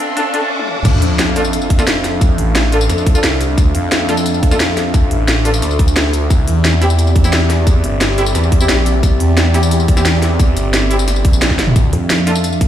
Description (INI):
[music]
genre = dark technical drum and bass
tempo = 176 BPM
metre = 4/4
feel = straight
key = D minor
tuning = A4 = 440 Hz
[part]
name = dark analog pad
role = sustained chords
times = 0.0-12.7 s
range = C4 to F5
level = -21 LUFS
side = left 1 dB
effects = chorus, sidechain pumping
[part]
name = drum and bass drum kit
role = drums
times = 0.0-12.7 s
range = crash cymbal, hi-hat, snare drum, tambourine, toms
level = -18 LUFS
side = equal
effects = none
[part]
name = riser and sub drop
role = sound effects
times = 0.0-2.2 s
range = none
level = -20 LUFS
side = left 1 dB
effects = none
[part]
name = semi-hollow electric guitar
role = arpeggios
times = 0.2-0.5 s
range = D4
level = -24 LUFS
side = left 1 dB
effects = tremolo, sidechain pumping, ping-pong delay
[part]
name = bright brass ensemble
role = stabs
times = 0.2-12.3 s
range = C4 to A4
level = -22 LUFS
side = equal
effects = ping-pong delay
[part]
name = phased detuned saw bass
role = bass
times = 0.8-11.9 s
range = G1 to F2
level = -15 LUFS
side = equal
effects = phaser, overdrive, sidechain pumping
[part]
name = electronic kick drum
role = drums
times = 0.8-12.7 s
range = none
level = -12 LUFS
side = equal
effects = none
[part]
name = pulsing pluck wobble bass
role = bass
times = 11.9-12.7 s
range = F2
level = -16 LUFS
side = right 1 dB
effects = chorus, tube saturation
[sound]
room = light reverb, digital ambience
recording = played on a big sound system in a bare room, stone room reverb, high-pass filter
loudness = -11 LUFS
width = side -11 dB against mid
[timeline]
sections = 0.8-12.7 A section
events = riser 0.0-0.8; drum fill 0.6, 11.5; drop 0.8-12.7; impact 0.8-2.2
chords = 0.0 Dm; 6.3 C; 11.8 Dm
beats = 0.17 0.51 | 0.85 1.19 1.53 1.87 | 2.21 2.55 2.90 3.24 | 3.58 3.92 4.26 4.60 | 4.94 5.28 5.62 5.96 | 6.30 6.64 6.99 7.33 | 7.67 8.01 8.35 8.69 | 9.03 9.37 9.71 10.05 | 10.39 10.74 11.08 11.42 | 11.76 12.10 12.44